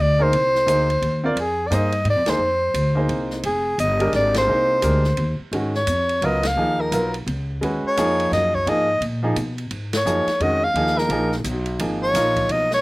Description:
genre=modal jazz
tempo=172 BPM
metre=3/4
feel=swing 62% on 8ths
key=G# dorian from 5.5 s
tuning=A4 = 440 Hz
part: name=breathy soprano saxophone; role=melody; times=0.0-12.8 s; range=Ab4 to E#5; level=-20 LUFS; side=equal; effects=none
part: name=upright bass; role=bass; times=0.0-12.8 s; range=F1 to B2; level=-24 LUFS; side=equal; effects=none
part: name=clear baby grand piano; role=accompaniment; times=0.2-12.7 s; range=D#3 to D5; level=-24 LUFS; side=right 1 dB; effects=none
part: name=open jazz drum kit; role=drums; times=0.3-12.8 s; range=hi-hat, kick drum, ride cymbal, snare drum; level=-32 LUFS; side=right 1 dB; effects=none
room=little or no reverb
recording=recorded outdoors, with no room sound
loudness=-18 LUFS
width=side -21 dB against mid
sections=0.0-5.5 A section; 5.5-12.8 B section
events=band accent 2.2, 4.3, 6.4, 9.9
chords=0.0 Ab; 1.4 Fm9; 3.4 Ab/F; 5.5 G#m69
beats=| 0.32 0.66 1.01 | 1.36 1.71 2.05 | 2.40 2.75 3.09 | 3.44 3.79 4.14 | 4.48 4.83 5.18 | 5.53 5.88 6.22 | 6.57 6.92 7.27 | 7.62 7.96 8.31 | 8.66 9.01 9.36 | 9.71 10.05 10.40 | 10.75 11.10 11.45 | 11.79 12.14 12.49

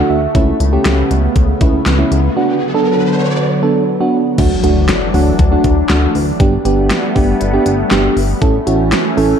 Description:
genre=synth-pop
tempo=119 BPM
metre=4/4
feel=straight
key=D major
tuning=A4 = 438 Hz
part: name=mellow FM electric piano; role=accompaniment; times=0.0-9.4 s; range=A3 to E5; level=-15 LUFS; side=right 2 dB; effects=chorus
part: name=phased analog pad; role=sustained chords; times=0.0-9.4 s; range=C#3 to F#4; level=-18 LUFS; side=left 1 dB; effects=phaser, chorus
part: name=chorused synth bass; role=bass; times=0.0-9.3 s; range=G1 to D2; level=-16 LUFS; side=equal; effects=none
part: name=pop drum kit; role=drums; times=0.3-9.3 s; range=crash cymbal, handclaps, hi-hat, kick drum, snare drum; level=-16 LUFS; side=left 1 dB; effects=none
part: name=riser and impact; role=sound effects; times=1.7-6.4 s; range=none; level=-24 LUFS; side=left 1 dB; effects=none
room=moderate lush hall reverb, RT60 2.0 s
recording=dark, warm production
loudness=-11 LUFS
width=side -8 dB against mid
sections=0.0-4.4 A section; 4.4-9.4 B section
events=FM electric piano fill 0.0-0.3; riser 1.7-4.4; impact 4.4-6.4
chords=0.3 Aadd9/C#; 2.4 Bm; 4.4 Dadd9; 6.4 Gadd9; 8.4 A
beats=| 0.35 0.85 1.36 1.86 | 2.37 2.87 3.38 3.88 | 4.38 4.89 5.39 5.90 | 6.40 6.90 7.41 7.91 | 8.42 8.92

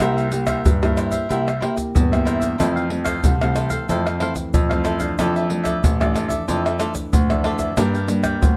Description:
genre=samba and choro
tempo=93 BPM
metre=4/4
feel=straight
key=F major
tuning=A4 = 440 Hz
part: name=cavaquinho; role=accompaniment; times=0.0-8.6 s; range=D4 to G5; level=-28 LUFS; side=equal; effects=none
part: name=nylon-string guitar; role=accompaniment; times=0.0-8.6 s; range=F2 to G4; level=-27 LUFS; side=equal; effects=none
part: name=clear baby grand piano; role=bass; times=0.0-8.6 s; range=A1 to G2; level=-25 LUFS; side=equal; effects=none
part: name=tube shaker, surdo, pandeiro and tamborim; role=percussion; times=0.0-8.6 s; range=none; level=-23 LUFS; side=equal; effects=none
room=light reverb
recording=dark, warm production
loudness=-20 LUFS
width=mono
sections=0.0-8.6 A section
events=none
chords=0.0 C7; 2.6 Fmaj7; 5.2 Dmadd9; 7.8 Gm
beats=| 0.02 0.66 1.31 1.96 | 2.60 3.25 3.90 4.54 | 5.19 5.84 6.48 7.13 | 7.78 8.42

